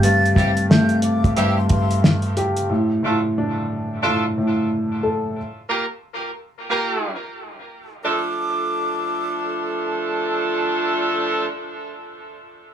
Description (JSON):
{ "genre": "hip hop, boom-bap hip-hop", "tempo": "90 BPM", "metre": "4/4", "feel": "swing 60% on 16ths", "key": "D minor", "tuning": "A4 = 440 Hz", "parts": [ { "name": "breathy mellow silver concert flute", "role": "melody", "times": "0.0-2.0, 8.0-10.0 s", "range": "C6 to A6", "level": "-26 LUFS", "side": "equal", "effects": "tape echo" }, { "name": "warm upright piano", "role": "accompaniment", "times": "0.0-5.4 s", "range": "G2 to A4", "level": "-19 LUFS", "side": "equal", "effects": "cassette tape" }, { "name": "dark analog pad", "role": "sustained chords", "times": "0.0-2.7 s", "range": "A3 to G4", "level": "-29 LUFS", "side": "equal", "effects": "chorus" }, { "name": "cloth-damped thuddy drum kit", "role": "drums", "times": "0.0-2.7 s", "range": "hi-hat, kick drum, snare drum", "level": "-18 LUFS", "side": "equal", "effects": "none" }, { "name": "clear horn section", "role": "stabs", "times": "0.4-11.5 s", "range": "F3 to Bb4", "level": "-23 LUFS", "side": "right 2 dB", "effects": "tape echo" } ], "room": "light reverb", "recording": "small room ambience", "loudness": "-18 LUFS", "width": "side -9 dB against mid", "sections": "0.0-8.0 A section; 8.0-10.7 B section", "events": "none", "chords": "0.0 Am7; 2.7 Dm; 5.4 Fsus24; 8.0 Dm" }